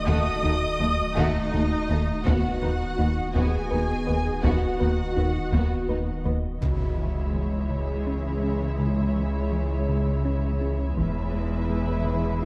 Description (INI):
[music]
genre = cinematic, hybrid orchestral and electronic film score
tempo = 55 BPM (dotted quarters)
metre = 6/8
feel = straight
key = C# minor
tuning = A4 = 437 Hz
[part]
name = rich symphonic violin section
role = melody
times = 0.0-6.3 s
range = D#5 to D#6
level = -36 LUFS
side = equal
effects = none
[part]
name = rich symphonic viola section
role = accompaniment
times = 0.0-12.4 s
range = G#3 to D#5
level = -35 LUFS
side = equal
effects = none
[part]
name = glassy FM pad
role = sustained chords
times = 0.0-12.4 s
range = D#3 to D#5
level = -34 LUFS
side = equal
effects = ensemble chorus, built-in reverb
[part]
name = warm sub bass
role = bass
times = 0.0-12.4 s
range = D#1 to C#2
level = -33 LUFS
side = equal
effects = none
[part]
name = rich symphonic violin section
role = second line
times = 0.1-12.4 s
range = A3 to E5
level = -38 LUFS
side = equal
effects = none
[part]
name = thumb-piano-like synth pluck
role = arpeggios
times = 0.1-12.4 s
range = C#3 to B4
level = -36 LUFS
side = equal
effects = chorus, delay
[part]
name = rubbery square bass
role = riff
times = 0.1-6.5 s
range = D#2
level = -30 LUFS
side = equal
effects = none
[part]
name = rich studio cello section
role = bass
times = 0.1-12.4 s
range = C#2 to E2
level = -33 LUFS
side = equal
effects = none
[part]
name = rich studio double bass section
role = bass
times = 0.1-6.3 s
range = D#2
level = -34 LUFS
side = equal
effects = none
[part]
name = taiko ensemble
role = drums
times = 0.1-12.4 s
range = none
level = -33 LUFS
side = equal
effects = none
[part]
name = impact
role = sound effects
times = 6.6-8.8 s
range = none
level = -36 LUFS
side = equal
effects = none
[sound]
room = moderate scoring stage reverb, RT60 1.8 s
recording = dark, warm production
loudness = -25 LUFS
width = mono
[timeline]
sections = 0.0-6.6 A section; 6.6-12.4 B section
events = impact 6.6-8.8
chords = 0.0 D#dim; 2.3 B/D#; 6.6 C#m; 11.0 E